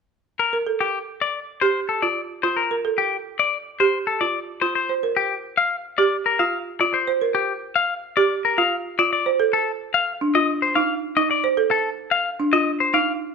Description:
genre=classical, minimalist pattern music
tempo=110 BPM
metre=4/4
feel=straight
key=Bb major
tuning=A4 = 440 Hz
part: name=semi-hollow electric guitar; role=melody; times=0.4-13.1 s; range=G4 to F5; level=-21 LUFS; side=left 6 dB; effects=none
part: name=folk marimba with medium hard mallets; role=arpeggios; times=0.5-13.1 s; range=D4 to C5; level=-22 LUFS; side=right 5 dB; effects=none
room=moderate large studio reverb, RT60 1.1 s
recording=minimal, uncompressed stereo recording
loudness=-19 LUFS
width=side -5 dB against mid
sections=0.4-13.3 A section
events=none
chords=0.4 Bbmaj7(no3); 4.8 Gm7; 9.1 F7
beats=| 0.40 0.94 1.49 2.03 | 2.58 3.12 3.67 4.21 | 4.76 5.30 5.85 6.39 | 6.94 7.49 8.03 8.58 | 9.12 9.67 10.21 10.76 | 11.30 11.85 12.39 12.94

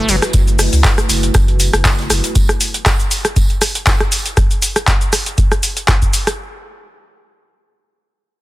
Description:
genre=acid house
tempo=119 BPM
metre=4/4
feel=swing 54% on 16ths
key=F# minor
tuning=A4 = 442 Hz
part: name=dark analog pad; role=sustained chords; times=0.0-2.3 s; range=A3 to B4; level=-24 LUFS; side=right 1 dB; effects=chorus, sidechain pumping
part: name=warm sub bass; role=bass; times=0.0-2.2 s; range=F#1 to C#2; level=-17 LUFS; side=equal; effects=sidechain pumping
part: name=booming analog drum machine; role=drums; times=0.1-6.4 s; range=handclaps, hi-hat, rim click, shaker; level=-16 LUFS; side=equal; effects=none
part: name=natural country drum kit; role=drums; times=0.1-4.2 s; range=hi-hat, snare drum, tambourine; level=-26 LUFS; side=right 1 dB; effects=sidechain pumping on hats, high-pass filter on hats, high-pass filter on snare, sidechain pumping on perc, high-pass filter on perc, high-pass filter on room
part: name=electronic kick drum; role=drums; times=0.3-6.1 s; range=none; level=-15 LUFS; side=equal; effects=none
room=little or no reverb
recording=dense, heavily limited modern master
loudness=-12 LUFS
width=side -17 dB against mid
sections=0.0-6.4 A section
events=drop 0.0-6.4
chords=0.0 F#m7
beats=| 0.34 0.84 1.35 1.85 | 2.35 2.86 3.36 3.87 | 4.37 4.88 5.38 5.88

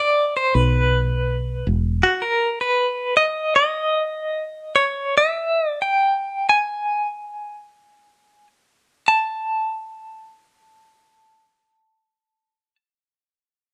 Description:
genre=acoustic folk-pop ballad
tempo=53-80 BPM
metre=4/4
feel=straight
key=unclear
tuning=A4 = 441 Hz
part: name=direct-recorded clean electric guitar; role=melody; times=0.0-12.8 s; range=F#4 to A5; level=-21 LUFS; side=equal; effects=tremolo
part: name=woody fretless electric bass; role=bass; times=0.5-2.0 s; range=E1 to B1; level=-22 LUFS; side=equal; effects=none
room=moderate studio reverb, RT60 0.7 s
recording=none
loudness=-21 LUFS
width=mono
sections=0.0-9.1 A section; 9.1-13.6 B section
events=slowing down 2.0-9.1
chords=0.0 E5; 2.0 N.C.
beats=0.54 1.29 | 2.04 2.79 3.56 4.35 | 5.17 6.04 6.97 7.97 | 9.06 10.19 11.31 12.44

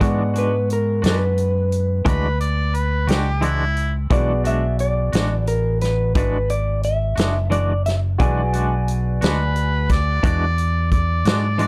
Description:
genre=slow blues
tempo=59 BPM (dotted quarters)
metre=12/8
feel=straight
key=E mixolydian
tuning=A4 = 440 Hz
part: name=electric guitar through a small old amp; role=melody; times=0.0-10.2 s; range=A#4 to G#5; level=-27 LUFS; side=equal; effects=none
part: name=clear upright piano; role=accompaniment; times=0.0-11.7 s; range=G#3 to C#6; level=-33 LUFS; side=equal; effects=none
part: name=twangy electric guitar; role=accompaniment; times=0.0-11.7 s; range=E3 to F#4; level=-27 LUFS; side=equal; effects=tremolo
part: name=fingered electric bass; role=bass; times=0.0-11.7 s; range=F#1 to G#2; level=-23 LUFS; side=equal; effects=tube saturation
part: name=natural country drum kit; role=drums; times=0.0-11.7 s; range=hi-hat, kick drum, snare drum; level=-24 LUFS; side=equal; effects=none
part: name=mellow harmonica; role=second line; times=2.1-11.7 s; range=E4 to D5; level=-27 LUFS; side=equal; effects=overdrive
room=little or no reverb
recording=dry, gritty hardware recording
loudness=-20 LUFS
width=mono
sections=0.0-11.7 A section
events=none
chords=0.0 E9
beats=| 0.01 1.04 2.06 3.09 | 4.11 5.13 6.16 7.18 | 8.20 9.22 10.24 11.25

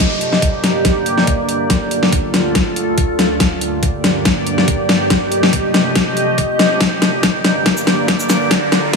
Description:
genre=heavy wobble dubstep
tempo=141 BPM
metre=4/4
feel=swing 54% on 16ths, half-time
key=G minor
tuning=A4 = 439 Hz
part: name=evolving wavetable pad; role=sustained chords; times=0.0-9.0 s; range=D2 to Eb5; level=-17 LUFS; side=right 1 dB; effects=chorus, built-in reverb, sidechain pumping
part: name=dubstep drum kit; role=drums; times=0.0-9.0 s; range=hi-hat, shaker, snare drum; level=-15 LUFS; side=left 2 dB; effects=small room reverb
part: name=electronic kick drum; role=drums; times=0.0-9.0 s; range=none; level=-19 LUFS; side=equal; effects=small room reverb
part: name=riser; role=sound effects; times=7.8-9.0 s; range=none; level=-26 LUFS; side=right 1 dB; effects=none
room=moderate lush hall reverb, RT60 2.2 s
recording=high-pass filter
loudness=-13 LUFS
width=side -4 dB against mid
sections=0.0-9.0 A section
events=build-up 0.0-9.0; drum fill 0.0-9.0; riser 7.8-9.0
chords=0.0 Gm; 1.7 Dm; 3.4 Gm; 5.1 F7; 6.8 Gm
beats=| 0.00 0.42 0.85 1.27 | 1.70 2.12 2.55 2.98 | 3.40 3.83 4.25 4.68 | 5.10 5.53 5.96 6.38 | 6.81 7.23 7.66 8.08 | 8.51 8.93

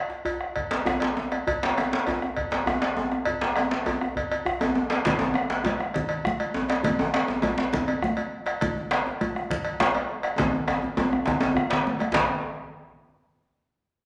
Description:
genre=west african traditional, West African drum ensemble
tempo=135 BPM (dotted quarters)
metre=12/8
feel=straight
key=none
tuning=none
part: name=djembe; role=percussion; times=0.1-12.3 s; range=none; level=-40 LUFS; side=equal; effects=none
part: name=cowbell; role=percussion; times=0.3-12.3 s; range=none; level=-33 LUFS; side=equal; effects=none
part: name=bombo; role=percussion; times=0.4-12.3 s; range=none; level=-35 LUFS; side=equal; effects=none
part: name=djembe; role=percussion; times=0.7-12.3 s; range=none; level=-28 LUFS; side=equal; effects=none
part: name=congas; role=percussion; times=5.1-12.3 s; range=none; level=-33 LUFS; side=equal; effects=none
room=wet large studio reverb, RT60 1.3 s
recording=none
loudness=-26 LUFS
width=mono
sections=0.0-12.1 A section; 12.1-13.9 B section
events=speeding up 0.0-13.9; drum fill 10.4-12.1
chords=none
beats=0.11 0.56 1.01 | 1.47 1.92 2.37 2.82 | 3.27 3.71 4.16 4.61 | 5.06 5.51 5.95 6.40 | 6.84 7.29 7.73 8.18 | 8.62 9.06 9.51 9.95 | 10.39 10.83 11.27 11.71 | 12.15

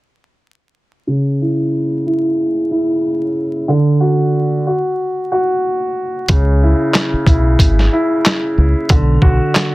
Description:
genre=hip hop, boom-bap hip-hop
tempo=92 BPM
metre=4/4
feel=swing 57% on 16ths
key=unclear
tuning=A4 = 440 Hz
part: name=warm upright piano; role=accompaniment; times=1.1-9.7 s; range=C#3 to F#4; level=-15 LUFS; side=equal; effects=high-pass filter, low-pass filter
part: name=deep dub fingered electric bass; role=bass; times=6.3-9.4 s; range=G#1 to C#2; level=-13 LUFS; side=equal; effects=none
part: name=lo-fi sampler-style drum kit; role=drums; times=6.3-9.7 s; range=handclaps, hi-hat, kick drum, snare drum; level=-13 LUFS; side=equal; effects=none
room=light reverb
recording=dense, heavily limited modern master, vinyl crackle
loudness=-13 LUFS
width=side -19 dB against mid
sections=1.1-9.7 A section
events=filter sweep on upright piano 1.1-9.7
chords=1.1 C#m; 3.7 D; 4.7 N.C.; 6.3 C#m; 8.9 Bm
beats=| 1.07 1.73 2.38 3.03 | 3.68 4.33 4.99 5.64 | 6.29 6.94 7.59 8.25 | 8.90 9.55

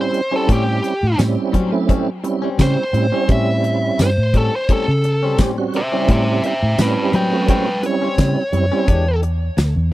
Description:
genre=straight-eighth soul blues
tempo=86 BPM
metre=4/4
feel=swing 55% on 16ths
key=unclear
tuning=A4 = 439 Hz
part: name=biting lead guitar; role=melody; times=0.0-9.2 s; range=G4 to G5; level=-21 LUFS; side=equal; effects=overdrive, tape echo
part: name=tonewheel organ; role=accompaniment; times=0.0-8.9 s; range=G3 to G4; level=-20 LUFS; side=right 5 dB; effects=slow rotary speaker, overdrive, chorus vibrato
part: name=vintage muted fingered electric bass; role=bass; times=0.0-9.9 s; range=D2 to F#3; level=-19 LUFS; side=equal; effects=none
part: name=direct-recorded clean electric guitar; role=stabs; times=0.1-9.6 s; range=A2 to G4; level=-26 LUFS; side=left 6 dB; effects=spring reverb
part: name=damped 70s drum kit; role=drums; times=0.1-9.8 s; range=hi-hat, kick drum, snare drum, tambourine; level=-16 LUFS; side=equal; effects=none
room=little or no reverb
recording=dry, close 1970s-style studio recording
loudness=-15 LUFS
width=side -16 dB against mid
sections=0.0-9.9 A section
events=lead electric guitar solo 0.0-9.9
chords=0.0 A7#9; 8.9 E7#9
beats=| 0.49 1.19 1.89 2.59 | 3.29 3.99 4.69 5.38 | 6.08 6.78 7.48 8.18 | 8.88 9.58

